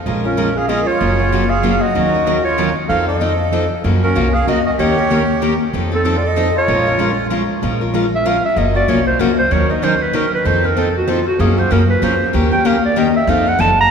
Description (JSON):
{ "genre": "acoustic string swing (jazz manouche)", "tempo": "191 BPM", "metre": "3/4", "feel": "swing 59% on 8ths", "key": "Bb minor", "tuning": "A4 = 438 Hz", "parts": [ { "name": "picked plugged-in steel-string acoustic guitar", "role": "accompaniment", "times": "0.1-13.7 s", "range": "Eb3 to Bb4", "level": "-22 LUFS", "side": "right 4 dB", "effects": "none" }, { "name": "picked steel-string acoustic guitar", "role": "accompaniment", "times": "0.1-13.7 s", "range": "Db3 to Bb4", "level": "-19 LUFS", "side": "left 5 dB", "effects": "none" }, { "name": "upright bass", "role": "bass", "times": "0.1-13.9 s", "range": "Gb1 to Gb2", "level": "-20 LUFS", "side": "equal", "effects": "none" }, { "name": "accordion", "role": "second line", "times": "0.2-7.3 s", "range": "C4 to A4", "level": "-22 LUFS", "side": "right 4 dB", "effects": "none" }, { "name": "warm clarinet", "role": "melody", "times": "0.3-13.9 s", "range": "F4 to Bb5", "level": "-18 LUFS", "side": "right 1 dB", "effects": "none" } ], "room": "wet church reverb, RT60 3.3 s", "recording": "recorded in a church or concert hall", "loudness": "-13 LUFS", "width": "side -6 dB against mid", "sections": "0.1-7.6 A section; 7.6-13.9 B section", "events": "clarinet solo 7.6-13.9", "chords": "0.1 Bbm7; 1.0 Gbmaj9; 2.0 Ebm9; 2.9 F7; 3.8 Gbmaj7; 4.8 Eb7; 5.7 F7; 6.7 Bbm7; 8.6 Gbmaj7; 9.5 Ebm7; 10.5 F7; 11.4 Gbmaj7; 12.3 Eb7; 13.3 F7", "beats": "| 0.06 0.38 0.69 | 1.01 1.32 1.64 | 1.95 2.27 2.58 | 2.90 3.22 3.53 | 3.85 4.16 4.48 | 4.79 5.11 5.42 | 5.74 6.05 6.37 | 6.68 7.00 7.31 | 7.63 7.94 8.26 | 8.57 8.88 9.20 | 9.51 9.83 10.14 | 10.46 10.77 11.08 | 11.40 11.71 12.02 | 12.34 12.65 12.96 | 13.28 13.59 13.91" }